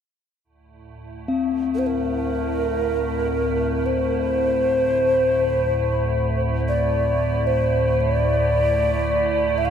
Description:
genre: world meditative, free-time meditation music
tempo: free time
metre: none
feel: none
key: unclear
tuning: A4 = 440 Hz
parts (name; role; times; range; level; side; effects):
- icy glass pad; drone; 1.0-9.7 s; D2 to A2; -24 LUFS; right 1 dB; chorus, built-in reverb
- bronze singing bowl; texture; 1.3-9.7 s; C4; -28 LUFS; left 7 dB; none
- breathy alto ocarina; melody; 1.7-9.7 s; Bb4 to F5; -21 LUFS; equal; none
room: wet huge ambient reverb, RT60 5.2 s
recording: dark, warm production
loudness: -19 LUFS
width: side -8 dB against mid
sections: 0.4-9.7 A section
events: none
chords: none

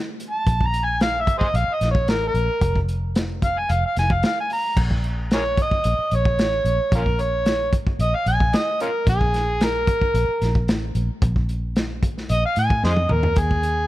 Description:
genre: straight-eighth soul blues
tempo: 112 BPM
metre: 4/4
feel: straight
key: Bb minor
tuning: A4 = 440 Hz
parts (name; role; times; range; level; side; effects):
- crunchy breakbeat drum kit; drums; 0.2-13.8 s; crash cymbal, hi-hat, kick drum, snare drum, toms; -22 LUFS; equal; none
- overdriven harmonica; melody; 0.3-13.9 s; Db4 to Bb5; -22 LUFS; equal; none
- vintage muted fingered electric bass; bass; 0.5-13.9 s; F1 to A2; -23 LUFS; equal; none
room: small room ambience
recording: none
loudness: -18 LUFS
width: side -16 dB against mid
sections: 0.0-4.8 A section; 4.8-13.9 B section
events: harmonica solo 4.8-13.9; drum fill 12.8-13.4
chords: none

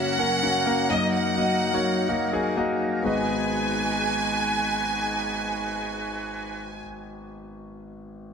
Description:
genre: piano-driven pop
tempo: 126 BPM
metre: 4/4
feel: straight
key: G# minor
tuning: A4 = 442 Hz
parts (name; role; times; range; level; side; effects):
- rich studio violin section; melody; 0.0-6.8 s; D#5 to G#5; -27 LUFS; right 2 dB; none
- clear concert grand piano; accompaniment; 0.0-8.3 s; G#1 to F#5; -26 LUFS; left 2 dB; none
- bright woodwind section; sustained chords; 0.0-6.8 s; F#2 to B4; -32 LUFS; right 3 dB; none
room: moderate plate reverb, RT60 3.5 s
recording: dark, warm production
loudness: -22 LUFS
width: side -6 dB against mid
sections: 0.0-3.0 A section; 3.0-6.9 B section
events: none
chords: 0.0 F#; 0.9 D#m/F#; 3.0 G#m7

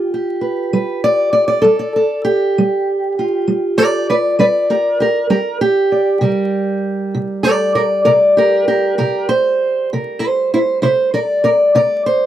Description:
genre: acoustic country blues, solo or duo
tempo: 65 BPM (dotted quarters)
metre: 12/8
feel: straight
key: unclear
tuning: A4 = 440 Hz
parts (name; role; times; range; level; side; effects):
- fingerpicked steel-string acoustic guitar; solo; 0.0-12.3 s; C3 to D5; -13 LUFS; right 1 dB; none
room: little or no reverb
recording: dry, close 1970s-style studio recording, vinyl crackle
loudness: -13 LUFS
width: side -11 dB against mid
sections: 0.0-12.3 A section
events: none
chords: 0.0 G7(no3); 6.2 C7(no3)

